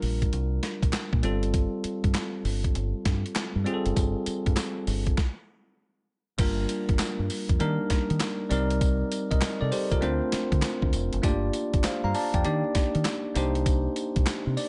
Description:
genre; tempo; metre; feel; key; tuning
R&B, new jack swing; 99 BPM; 4/4; swing 65% on 16ths; unclear; A4 = 439 Hz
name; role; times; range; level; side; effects
bell-like tine electric piano; accompaniment; 0.0-14.7 s; G3 to Bb5; -31 LUFS; equal; none
deep dub fingered electric bass; bass; 0.0-14.6 s; F1 to Eb3; -30 LUFS; equal; none
boom bap sampler-style drum kit; drums; 0.0-14.7 s; crash cymbal, handclaps, hi-hat, kick drum, snare drum, tambourine; -30 LUFS; equal; gated reverb
group handclap; percussion; 0.9-14.4 s; none; -45 LUFS; equal; none
room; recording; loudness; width
digital ambience; nothing above 10.8 kHz; -27 LUFS; mono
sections
0.0-6.4 A section; 6.4-14.7 B section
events
stop 5.2-6.4; tine electric piano fill 14.3-14.7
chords
0.0 Bb6; 1.2 G9sus4; 6.4 Gm7; 7.6 Ebmaj7; 8.5 Cm9; 10.0 Dm7; 11.2 Gm7; 12.4 Ebmaj7; 13.4 Cm9

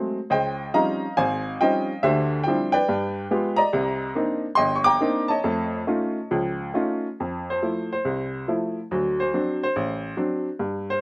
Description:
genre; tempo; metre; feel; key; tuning
solo jazz; 140 BPM; 4/4; swing 66% on 8ths, rubato; F major from 7.2 s; A4 = 444 Hz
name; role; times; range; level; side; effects
clear upright piano; solo; 0.0-11.0 s; G1 to D6; -21 LUFS; equal; none
room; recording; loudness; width
little or no reverb; recorded outdoors, with no room sound; -21 LUFS; side -29 dB against mid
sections
0.0-7.2 A section; 7.2-11.0 B section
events
upright piano solo 7.2-11.0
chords
0.3 Dbmaj9#11; 2.0 Dm11; 2.9 G7b9; 3.7 Cm9; 5.4 Faug7; 7.2 Fmaj7; 8.9 D7

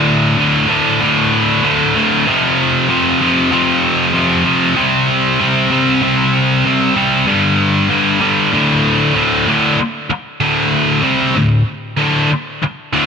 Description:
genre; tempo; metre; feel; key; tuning
rock; 96 BPM; 4/4; straight; D minor; A4 = 440 Hz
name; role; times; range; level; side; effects
scooped high-gain guitar; solo; 0.0-13.1 s; D2 to C4; -11 LUFS; equal; distortion, tape echo
room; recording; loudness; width
moderate studio reverb, RT60 0.7 s; none; -11 LUFS; side -6 dB against mid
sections
0.0-9.8 A section; 9.8-13.1 B section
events
none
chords
0.0 D5; 2.3 F5; 4.8 C5; 7.3 G5; 8.5 D5

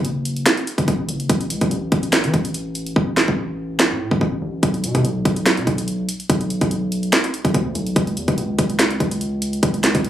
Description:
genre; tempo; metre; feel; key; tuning
hip hop, trap; 144 BPM; 4/4; half-time; F# minor; A4 = 440 Hz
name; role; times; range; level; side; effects
long sustained 808-style bass; bass; 0.0-10.1 s; F#1 to E3; -23 LUFS; equal; none
trap drum kit; drums; 0.0-10.1 s; handclaps, hi-hat, kick drum, snare drum; -18 LUFS; equal; overdrive
room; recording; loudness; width
light reverb, digital ambience; recorded on a phone in the room, club reverb; -17 LUFS; side -11 dB against mid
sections
0.0-10.1 A section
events
hi-hats muted 3.0-4.6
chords
none

